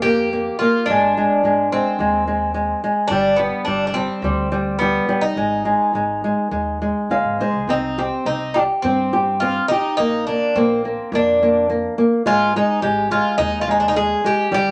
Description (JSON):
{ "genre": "fado-style ballad", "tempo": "106 BPM", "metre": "4/4", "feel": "rubato", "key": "unclear", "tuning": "A4 = 439 Hz", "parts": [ { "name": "Irish bouzouki", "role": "melody", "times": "0.0-14.7 s", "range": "B3 to Ab4", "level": "-23 LUFS", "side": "equal", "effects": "none" }, { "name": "nylon-string guitar", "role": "accompaniment", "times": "0.0-14.7 s", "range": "G3 to F5", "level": "-21 LUFS", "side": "equal", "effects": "none" }, { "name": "upright bass", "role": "bass", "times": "0.0-14.7 s", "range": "G1 to G2", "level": "-33 LUFS", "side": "equal", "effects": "none" } ], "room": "moderate studio reverb, RT60 0.8 s", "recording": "none", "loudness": "-19 LUFS", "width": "mono", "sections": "0.0-14.7 A section", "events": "nylon-string guitar fill 6.8-7.7", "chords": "0.0 Bb5; 0.9 Ab; 3.1 G5; 5.4 Ab; 7.7 C5; 10.0 Bb; 12.3 Ab5" }